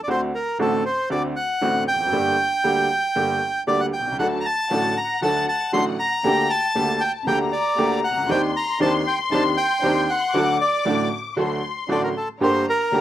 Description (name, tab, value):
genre	tango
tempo	117 BPM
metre	4/4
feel	rubato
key	G harmonic minor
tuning	A4 = 440 Hz
part	bandoneon	melody	0.0-13.0 s	A4 to C6	-22 LUFS	equal	none
part	bright upright piano	accompaniment	0.1-13.0 s	G1 to G4	-23 LUFS	right 1 dB	none
part	warm studio violin section	second line	4.2-13.0 s	F#5 to D6	-27 LUFS	left 7 dB	none
part	dark symphonic string section	stabs	4.2-13.0 s	D3 to C5	-27 LUFS	right 1 dB	none
room	moderate studio reverb, RT60 0.5 s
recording	rough home demo mix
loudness	-19 LUFS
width	side -12 dB against mid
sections	0.0-13.0 A section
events	none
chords	0.1 D7; 2.1 Gm; 4.2 D; 6.2 Gmadd9/D; 8.3 Cmadd9/Eb; 10.3 D; 12.4 Gm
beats	| 0.08 0.59 1.10 1.61 | 2.13 2.64 3.15 3.67 | 4.19 4.70 5.22 5.73 | 6.24 6.75 7.27 7.78 | 8.29 8.80 9.32 9.83 | 10.35 10.86 11.38 11.89 | 12.41 12.93